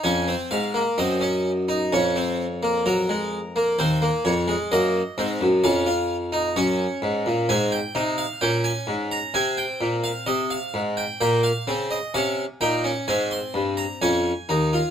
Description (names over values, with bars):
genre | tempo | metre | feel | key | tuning
classical, baroque-style 3-part fugue for harpsichord | 64 BPM | 4/4 | straight | Db major | A4 = 440 Hz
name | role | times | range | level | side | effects
harpsichord | solo | 0.0-14.9 s | Eb2 to C6 | -21 LUFS | equal | none
room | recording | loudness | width
light reverb | close, detailed microphones | -21 LUFS | side -8 dB against mid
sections
0.0-14.9 A section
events
none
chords
0.0 Db/F; 3.8 Cdim/Eb; 5.6 Db/F; 7.5 Ab; 11.2 Gdim/Bb; 13.1 Ab